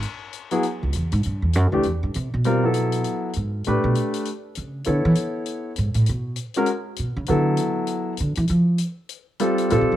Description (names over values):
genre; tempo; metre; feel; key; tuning
jazz piano trio; 199 BPM; 4/4; swing 61% on 8ths; unclear; A4 = 436 Hz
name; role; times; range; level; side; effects
upright bass; bass; 0.0-10.0 s; C#2 to E#3; -21 LUFS; right 1 dB; none
hi-hat; drums; 0.0-9.8 s; none; -37 LUFS; left 11 dB; none
clear concert grand piano; melody; 0.5-10.0 s; E3 to C#5; -22 LUFS; left 1 dB; none
room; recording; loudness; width
light reverb; 1960s-style stereo; -20 LUFS; side -12 dB against mid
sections
0.0-9.7 A section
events
upright bass solo 0.0-10.0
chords
0.0 N.C.; 1.2 C; 2.5 B5; 3.7 A9sus4; 4.3 N.C.; 4.9 Dsus2; 6.1 N.C.; 6.7 Bsus2; 7.3 Bm7; 8.5 N.C.; 9.1 G9sus4